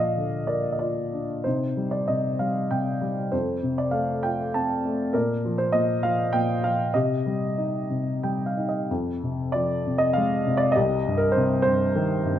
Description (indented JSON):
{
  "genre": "classical, lyrical solo piano",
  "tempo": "89-103 BPM",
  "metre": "3/4",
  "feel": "rubato",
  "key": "C dorian, F dorian from 8.9 s",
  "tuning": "A4 = 440 Hz",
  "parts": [
    { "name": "warm baby grand piano", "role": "solo", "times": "0.0-12.4 s", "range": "C2 to A5", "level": "-22 LUFS", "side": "equal", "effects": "none" }
  ],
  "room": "moderate recital hall reverb, RT60 1.7 s",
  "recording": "nothing above 7.9 kHz",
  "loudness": "-22 LUFS",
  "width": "side -11 dB against mid",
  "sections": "0.0-8.9 A section; 8.9-12.4 B section",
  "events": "grand piano fill 7.9-8.9",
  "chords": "0.0 Bb; 1.5 Cm; 3.3 F; 5.1 Bb; 6.9 Cm; 8.9 Fm; 10.8 Cm",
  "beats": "0.17 0.81 | 1.45 2.10 2.71 | 3.32 3.94 4.54 | 5.14 5.73 6.33 | 6.95 7.58 8.24 | 8.90 9.54 10.17 | 10.77 11.36 11.96"
}